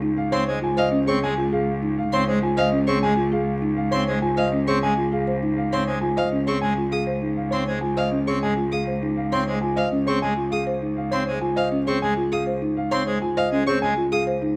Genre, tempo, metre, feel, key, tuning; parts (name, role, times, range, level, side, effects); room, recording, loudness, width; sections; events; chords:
classical, minimalist pattern music; 100 BPM; 3/4; straight; Db major; A4 = 440 Hz
folk marimba with soft mallets; arpeggios; 0.0-14.6 s; Db4 to C5; -27 LUFS; equal
rich cello; bass; 0.0-14.6 s; Db2; -29 LUFS; equal
dark grand piano; melody; 0.2-14.3 s; Db5 to Ab5; -30 LUFS; equal
pipe organ, full organ; accompaniment; 0.3-13.9 s; Ab3 to C4; -30 LUFS; equal
rich violin; arpeggios; 0.3-14.2 s; F5 to Eb6; -31 LUFS; equal
light reverb; close, detailed microphones; -23 LUFS; mono
0.0-14.6 A section
0.0 Dbmaj7